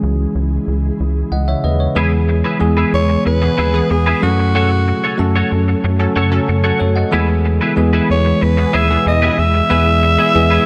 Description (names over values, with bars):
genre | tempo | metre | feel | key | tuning
pop | 93 BPM | 4/4 | straight | unclear | A4 = 440 Hz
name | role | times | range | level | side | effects
bell-like tine electric piano | accompaniment | 0.0-10.7 s | E3 to F#5 | -20 LUFS | equal | none
ethereal airy pad | sustained chords | 0.0-10.7 s | B2 to A4 | -28 LUFS | equal | none
rubbery square bass | bass | 0.0-10.6 s | C#2 to F#2 | -19 LUFS | equal | none
twelve-string electric guitar | riff | 2.0-10.7 s | B3 to C#5 | -24 LUFS | equal | ensemble chorus
raspy alto saxophone | melody | 2.9-10.7 s | F#4 to E5 | -19 LUFS | equal | none
funky polysynth comp | stabs | 3.4-9.4 s | E3 to A4 | -27 LUFS | equal | chorus, tape echo
room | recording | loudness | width
light reverb, digital ambience | none | -15 LUFS | mono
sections
0.0-2.0 A section; 2.0-10.7 B section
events
none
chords
0.0 C#m; 2.0 E; 4.2 F#m; 7.1 E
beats
0.03 0.68 1.32 | 1.97 2.61 3.26 3.90 | 4.55 5.19 5.84 6.48 | 7.13 7.77 8.42 9.06 | 9.71 10.35